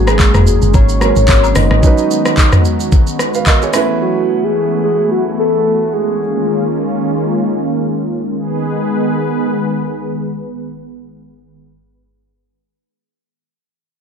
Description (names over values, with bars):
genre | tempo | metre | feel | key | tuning
amapiano | 110 BPM | 4/4 | swing 55% on 16ths | unclear | A4 = 440 Hz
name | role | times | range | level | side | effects
soft octave-layered synth lead | melody | 0.0-7.0 s | F#4 to D#5 | -17 LUFS | left 1 dB | chorus, phaser, digital delay
warm grand piano | accompaniment | 0.0-6.2 s | F#3 to E#5 | -20 LUFS | right 6 dB | none
warm analog pad | sustained chords | 0.0-11.6 s | D#3 to B4 | -18 LUFS | equal | chorus, sidechain pumping
deep log drum bass | bass | 0.0-1.8 s | F#1 to G#1 | -13 LUFS | equal | none
smooth R&B drum kit | drums | 0.1-3.9 s | handclaps, hi-hat, kick drum, rim click, shaker, toms | -12 LUFS | equal | none
agogo bells | percussion | 0.1-1.6 s | none | -26 LUFS | left 8 dB | none
room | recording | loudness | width
digital ambience | dark, warm production, faint mains hum | -11 LUFS | side -7 dB against mid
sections
0.0-8.4 A section; 8.4-12.7 B section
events
none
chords
0.0 G#9sus4; 1.8 C#9sus4; 3.7 B9sus4; 6.2 D#9sus4; 8.4 G#m